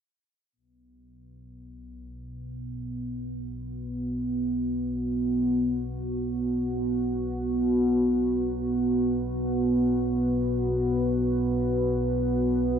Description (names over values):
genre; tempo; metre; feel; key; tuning
dark ambient drone; free time; none; none; unclear; A4 = 440 Hz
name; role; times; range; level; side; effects
deep dark ambient pad; sustained chords; 2.6-12.8 s; B3 to B4; -25 LUFS; right 1 dB; chorus, built-in reverb
analog drone; drone; 1.1-12.8 s; B1 to B2; -34 LUFS; left 1 dB; chorus
room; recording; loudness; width
wet huge ambient reverb, RT60 8.0 s; dark, warm production; -24 LUFS; side -8 dB against mid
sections
0.5-12.8 A section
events
fade-in on synth drone 0.5-12.8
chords
0.5 B5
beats
free time